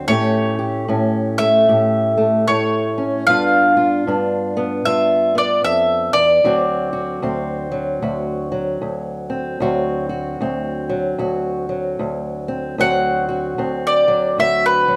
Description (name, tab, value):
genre	acoustic country blues, solo or duo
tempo	76 BPM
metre	4/4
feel	swing 62% on 8ths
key	D mixolydian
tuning	A4 = 441 Hz
part	fingerpicked old ladder-braced acoustic guitar	accompaniment	0.0-15.0 s	D2 to G4	-22 LUFS	equal	none
part	mandolin	melody	0.1-15.0 s	B4 to F#5	-18 LUFS	equal	none
room	moderate studio reverb, RT60 0.5 s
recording	none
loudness	-18 LUFS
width	mono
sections	0.0-12.8 A section; 12.8-15.0 B section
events	mandolin solo 12.8-15.0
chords	0.1 A7; 3.3 G7; 6.4 D7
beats	| 0.08 0.88 1.67 2.47 | 3.27 4.06 4.86 5.65 | 6.45 7.24 8.03 8.83 | 9.62 10.41 11.21 12.00 | 12.79 13.58 14.38